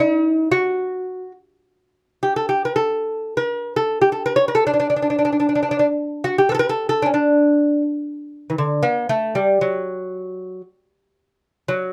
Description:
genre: persian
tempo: 116 BPM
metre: 3/4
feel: straight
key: D dastgah chahargah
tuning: A4 = 441 Hz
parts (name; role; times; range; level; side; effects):
- lute; solo; 0.0-11.9 s; D3 to C#5; -20 LUFS; equal; none
room: light reverb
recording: close, detailed microphones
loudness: -20 LUFS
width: mono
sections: 0.0-8.0 A section; 8.0-11.9 B section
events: none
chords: none

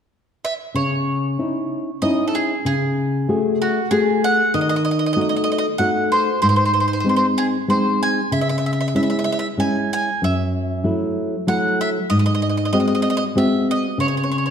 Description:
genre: italian folk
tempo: 95 BPM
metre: 3/4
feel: straight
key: C# harmonic minor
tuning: A4 = 438 Hz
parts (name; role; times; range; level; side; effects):
- bowl-back mandolin; melody; 0.4-14.5 s; F#4 to G#5; -22 LUFS; right 2 dB; none
- nylon-string guitar; accompaniment; 0.7-14.5 s; F#2 to G#4; -19 LUFS; left 1 dB; none
room: wet recital hall reverb, RT60 1.5 s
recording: dark, warm production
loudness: -17 LUFS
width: side -7 dB against mid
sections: 0.7-14.5 A section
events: none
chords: 0.0 N.C.; 0.7 C#madd9; 2.7 F#madd9/C#; 4.5 D#dim; 6.4 G#; 8.3 C#m; 10.2 F#m7; 12.1 G#7; 14.0 N.C.

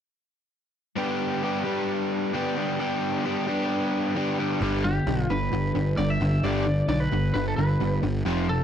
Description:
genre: rock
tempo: 132 BPM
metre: 4/4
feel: straight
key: G mixolydian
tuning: A4 = 440 Hz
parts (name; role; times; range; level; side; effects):
- overdriven electric guitar; riff; 1.0-8.6 s; F2 to G4; -25 LUFS; equal; none
- fuzz picked electric bass; bass; 4.6-8.6 s; F1 to B1; -27 LUFS; equal; overdrive
- lightly driven lead guitar; melody; 4.8-8.6 s; G4 to E5; -30 LUFS; equal; slapback echo
room: little or no reverb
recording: dry, close 1970s-style studio recording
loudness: -23 LUFS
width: side -9 dB against mid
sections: 1.0-4.6 A section; 4.6-8.6 B section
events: none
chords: 1.0 G

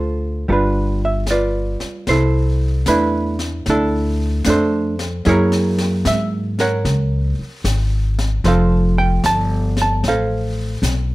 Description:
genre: jazz ballad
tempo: 75 BPM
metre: 4/4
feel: swing 67% on 8ths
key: unclear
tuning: A4 = 439 Hz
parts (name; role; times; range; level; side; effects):
- hollow-body jazz guitar; accompaniment; 0.0-11.1 s; D3 to A5; -18 LUFS; right 2 dB; none
- upright bass; bass; 0.0-11.1 s; F1 to G#2; -19 LUFS; left 1 dB; none
- jazz brush drum kit; drums; 0.5-11.1 s; brushed snare drum, hi-hat, snare drum; -27 LUFS; left 2 dB; none
room: little or no reverb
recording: close, detailed microphones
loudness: -16 LUFS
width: side -18 dB against mid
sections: 0.0-2.1 A section; 2.1-11.1 B section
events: none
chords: 0.5 G7; 2.1 C69; 5.3 F#9; 8.4 F

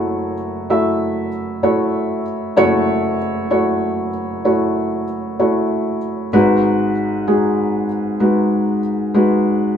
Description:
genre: folk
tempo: 64 BPM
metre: 4/4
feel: straight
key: F# dorian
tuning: A4 = 438 Hz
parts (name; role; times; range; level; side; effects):
- felt-muted upright piano; solo; 0.0-9.8 s; F#1 to E5; -15 LUFS; equal; none
room: wet studio reverb, RT60 0.7 s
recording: band playing live in one room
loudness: -15 LUFS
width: side -8 dB against mid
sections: 0.0-9.8 A section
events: none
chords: 0.0 F#m7; 6.3 G#m7

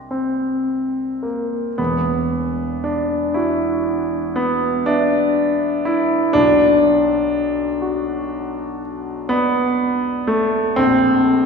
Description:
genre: classical, impressionist solo piano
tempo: 35-42 BPM (dotted quarters)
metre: 9/8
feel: rubato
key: unclear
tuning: A4 = 440 Hz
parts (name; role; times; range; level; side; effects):
- warm grand piano; solo; 0.0-11.5 s; E1 to Bb6; -16 LUFS; equal; none
room: wet concert hall reverb, RT60 2.3 s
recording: heard from further back in the room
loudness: -16 LUFS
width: side -5 dB against mid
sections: 0.0-1.8 A section; 1.8-11.5 B section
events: none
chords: 0.0 Cm9; 1.8 Esus2; 6.4 Bm; 10.8 Bbsus2

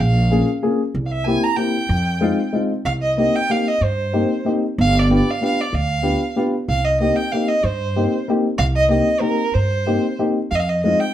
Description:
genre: musette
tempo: 188 BPM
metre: 3/4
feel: straight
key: C minor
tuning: A4 = 440 Hz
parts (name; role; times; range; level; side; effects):
- rich violin; melody; 0.0-11.1 s; Bb4 to Bb5; -21 LUFS; right 2 dB; none
- upright bass; bass; 0.0-10.9 s; G1 to G2; -19 LUFS; right 1 dB; none
- dark upright piano; accompaniment; 0.3-11.0 s; Ab3 to Ab4; -20 LUFS; left 2 dB; none
room: moderate studio reverb, RT60 0.5 s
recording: none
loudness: -16 LUFS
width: side -11 dB against mid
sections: 0.0-2.9 A section; 2.9-11.1 B section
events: none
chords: 0.0 Bbm7; 0.9 C7; 1.9 Fm7; 2.9 Cm7; 4.8 G7; 6.7 Cm7; 10.5 Fm7

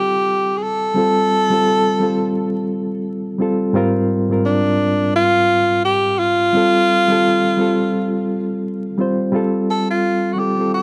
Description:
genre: R&B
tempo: 86 BPM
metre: 4/4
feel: swing 59% on 16ths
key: unclear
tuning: A4 = 439 Hz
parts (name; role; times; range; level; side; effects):
- breathy tenor saxophone; melody; 0.0-10.8 s; D4 to A4; -19 LUFS; equal; none
- mellow reed electric piano; accompaniment; 0.0-10.8 s; Ab2 to C5; -21 LUFS; equal; fast tremolo
room: moderate small room ambience, RT60 0.5 s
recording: dark, warm production, vinyl crackle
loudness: -17 LUFS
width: mono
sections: 0.0-9.3 A section; 9.3-10.8 B section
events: none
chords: 0.0 G9sus4; 3.8 Abmaj9#11; 6.5 G9sus4

